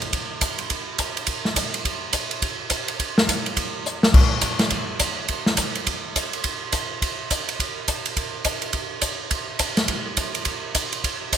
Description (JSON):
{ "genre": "jazz", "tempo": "209 BPM", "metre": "4/4", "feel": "swing 62% on 8ths", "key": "none", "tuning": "none", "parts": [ { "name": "swinging big-band drum kit", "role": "drums", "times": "0.0-11.4 s", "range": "crash cymbal, hi-hat, kick drum, ride cymbal, snare drum", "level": "-21 LUFS", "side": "equal", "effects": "none" } ], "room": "light reverb", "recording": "none", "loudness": "-21 LUFS", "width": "side -9 dB against mid", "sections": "0.0-11.4 A section", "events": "drum fill 3.9", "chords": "none" }